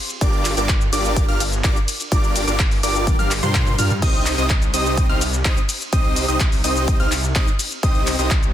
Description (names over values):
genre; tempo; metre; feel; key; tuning
EDM, festival progressive house; 126 BPM; 4/4; straight; C minor; A4 = 440 Hz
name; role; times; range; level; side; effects
big-room dance drum kit; drums; 0.1-8.5 s; crash cymbal, handclaps, hi-hat, ride cymbal, shaker, toms; -24 LUFS; left 1 dB; none
plucky unison lead; arpeggios; 0.2-8.3 s; C6 to F6; -26 LUFS; equal; sidechain pumping, digital delay
big supersaw lead; riff; 0.2-8.3 s; C4 to F5; -24 LUFS; equal; sidechain pumping, digital delay
wide detuned saw bass; bass; 0.2-8.5 s; G1 to G2; -24 LUFS; equal; chorus, sidechain pumping
electronic kick drum; drums; 0.2-8.4 s; none; -19 LUFS; equal; none
room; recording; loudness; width
digital ambience; dense, heavily limited modern master; -16 LUFS; side -11 dB against mid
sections
0.0-4.0 A section; 4.0-8.5 A section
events
drop 0.0-4.0, 4.0-8.5; drum fill 3.1-4.0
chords
0.2 Gm7; 4.0 Cm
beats
| 0.21 0.69 1.17 1.64 | 2.12 2.59 3.07 3.55 | 4.02 4.50 4.97 5.45 | 5.93 6.40 6.88 7.36 | 7.83 8.31